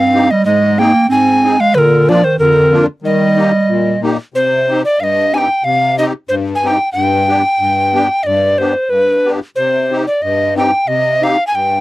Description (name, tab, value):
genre	alpine folk, alpine dance band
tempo	92 BPM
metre	2/4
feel	straight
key	Eb major, C minor from 4.3 s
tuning	A4 = 440 Hz
part	breathy alto recorder	melody	0.0-11.8 s	Bb4 to Ab5	-12 LUFS	equal	none
part	clear clarinet	second line	0.0-4.0 s	D3 to C4	-13 LUFS	right 2 dB	none
part	musette accordion	accompaniment	0.0-11.8 s	F2 to Ab4	-17 LUFS	left 3 dB	none
room	light reverb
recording	dry, close 1970s-style studio recording, lossy compression artefacts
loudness	-11 LUFS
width	side -17 dB against mid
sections	0.0-4.3 A section; 4.3-11.8 B section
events	none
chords	0.4 Ab; 1.7 Bb; 3.0 Eb; 4.3 Cm; 6.9 G; 9.6 Cm